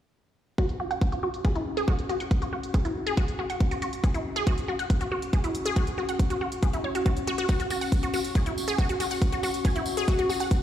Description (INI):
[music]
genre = psychedelic trance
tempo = 139 BPM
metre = 4/4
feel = straight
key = unclear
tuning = A4 = 440 Hz
[part]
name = wide unison pluck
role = riff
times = 0.6-10.4 s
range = E4 to F#5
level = -30 LUFS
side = equal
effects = phaser, auto-pan, sidechain pumping, ping-pong delay
[part]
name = electronic hi-hat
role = drums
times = 0.6-10.6 s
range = none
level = -43 LUFS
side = equal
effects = overdrive, low-pass filter on hats
[part]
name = electronic kick drum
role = drums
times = 0.6-10.6 s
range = none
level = -24 LUFS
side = equal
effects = none
[part]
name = warbly tape-like pad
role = texture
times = 0.7-10.6 s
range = C#4 to C#6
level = -33 LUFS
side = left 1 dB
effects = chorus, built-in reverb, sidechain pumping
[part]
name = tambourine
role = percussion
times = 7.5-10.6 s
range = none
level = -38 LUFS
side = right 3 dB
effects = none
[sound]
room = light reverb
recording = played on a big sound system in a bare room, stone room reverb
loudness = -24 LUFS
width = side -11 dB against mid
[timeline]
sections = 0.6-10.6 A section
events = filter sweep on synth arpeggio sound 0.6-10.6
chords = 0.6 F#5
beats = | 0.58 1.01 1.45 1.88 | 2.31 2.74 3.17 3.60 | 4.04 4.47 4.90 5.33 | 5.76 6.20 6.63 7.06 | 7.49 7.92 8.35 8.79 | 9.22 9.65 10.08 10.51